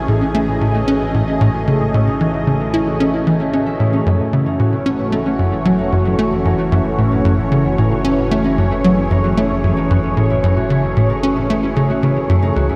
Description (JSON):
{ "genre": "ambient", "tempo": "113 BPM", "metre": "4/4", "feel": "straight", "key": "unclear", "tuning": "A4 = 440 Hz", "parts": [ { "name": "lush unison pad", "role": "sustained chords", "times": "0.0-12.8 s", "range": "E3 to D#5", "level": "-21 LUFS", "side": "equal", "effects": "chorus, phaser" }, { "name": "Celtic harp", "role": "arpeggios", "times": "0.0-12.8 s", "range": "B3 to E5", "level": "-31 LUFS", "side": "equal", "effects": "analog delay" }, { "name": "warm sub bass", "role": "bass", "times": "0.0-12.8 s", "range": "F#1 to A1", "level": "-32 LUFS", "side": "equal", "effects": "none" }, { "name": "wind-like tuned noise texture", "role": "texture", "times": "0.0-12.8 s", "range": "C#4 to G#5", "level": "-31 LUFS", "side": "equal", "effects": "built-in reverb" }, { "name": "tight sequencer bass", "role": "riff", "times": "0.1-12.7 s", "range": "C#2 to E4", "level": "-18 LUFS", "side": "equal", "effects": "subtle chorus, analog delay" } ], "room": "wet cathedral reverb, RT60 6.9 s", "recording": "in a vast, echoing space", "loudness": "-16 LUFS", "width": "mono", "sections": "0.0-12.8 A section", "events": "fade-in on harp 0.0-12.8; fade-in on sub bass 0.0-12.8", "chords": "0.0 Amaj7; 4.1 F#m7" }